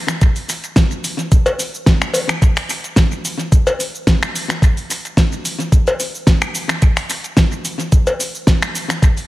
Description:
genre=nu-disco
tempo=109 BPM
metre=4/4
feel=swing 53% on 16ths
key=none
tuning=none
part: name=pop drum kit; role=drums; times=0.1-9.3 s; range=finger snaps, hi-hat, shaker, snare drum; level=-18 LUFS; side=equal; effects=tape echo
part: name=electronic kick drum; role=drums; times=0.2-9.1 s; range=none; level=-12 LUFS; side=equal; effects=none
part: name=cowbell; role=percussion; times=1.5-8.2 s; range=none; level=-19 LUFS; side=left 2 dB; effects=none
room=light reverb, digital ambience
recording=echo-heavy mix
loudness=-14 LUFS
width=side -17 dB against mid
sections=0.0-9.3 A section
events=none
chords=none

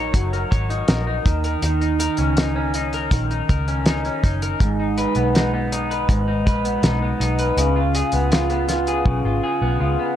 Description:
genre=indie pop, bedroom pop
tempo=81 BPM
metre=4/4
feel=straight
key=unclear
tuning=A4 = 438 Hz
part: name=electric guitar through a small old amp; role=accompaniment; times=0.0-10.2 s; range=G#2 to C#5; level=-21 LUFS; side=equal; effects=wide subtle chorus, vibrato effect
part: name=vintage muted picked electric bass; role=bass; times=0.0-10.0 s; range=F#1 to D#2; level=-23 LUFS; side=equal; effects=none
part: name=cloth-damped thuddy drum kit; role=drums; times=0.1-9.2 s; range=hi-hat, kick drum, snare drum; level=-20 LUFS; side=equal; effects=none
room=light reverb, small room ambience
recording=none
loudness=-18 LUFS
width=side -11 dB against mid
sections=0.0-10.2 A section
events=drum fill 9.1-10.2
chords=0.0 F#6; 1.3 D#7(no3); 4.6 G#m; 7.6 C#7

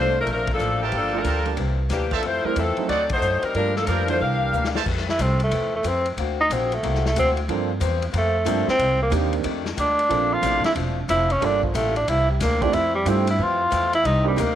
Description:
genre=jazz, big band swing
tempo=183 BPM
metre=4/4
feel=swing 64% on 8ths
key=F major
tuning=A4 = 440 Hz
part: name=edgy saxophone section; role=melody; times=0.0-4.7 s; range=E3 to F5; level=-23 LUFS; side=left 2 dB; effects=none
part: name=clear grand piano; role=accompaniment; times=0.0-4.5, 7.5-14.4 s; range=Eb3 to A4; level=-28 LUFS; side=right 12 dB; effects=none
part: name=picked swing-style acoustic guitar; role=accompaniment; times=0.0-14.6 s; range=F2 to A4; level=-31 LUFS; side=left 11 dB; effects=none
part: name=upright bass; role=bass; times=0.0-14.6 s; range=E1 to G2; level=-25 LUFS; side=equal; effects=none
part: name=swinging big-band drum kit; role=drums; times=0.3-14.5 s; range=crash cymbal, hi-hat, kick drum, ride cymbal, snare drum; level=-32 LUFS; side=left 2 dB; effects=none
part: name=brilliant trumpet section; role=stabs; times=0.8-4.8 s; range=Bb4 to A5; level=-30 LUFS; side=right 9 dB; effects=none
part: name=mellow tenor saxophone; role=melody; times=5.1-14.6 s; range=F3 to F4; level=-21 LUFS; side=right 1 dB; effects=none
room=light reverb, small room ambience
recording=1960s-style stereo with parts hard left and right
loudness=-19 LUFS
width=side -11 dB against mid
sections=0.0-4.9 A section; 4.9-14.6 B section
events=band accent 0.4, 3.1; drum fill 4.5-4.9; tenor saxophone solo 4.9-14.6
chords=0.0 Bbmaj7; 0.9 Gm9; 1.6 C9; 2.2 Fmaj7; 2.9 D7b9; 3.5 Gm7; 4.2 C9; 4.9 Fmaj7; 6.2 D7b13; 7.5 Gm11; 8.8 Cm7; 9.4 F6; 10.1 Bbmaj7; 11.4 Gm9; 12.1 C9; 12.7 Fmaj7; 14.0 Cm7

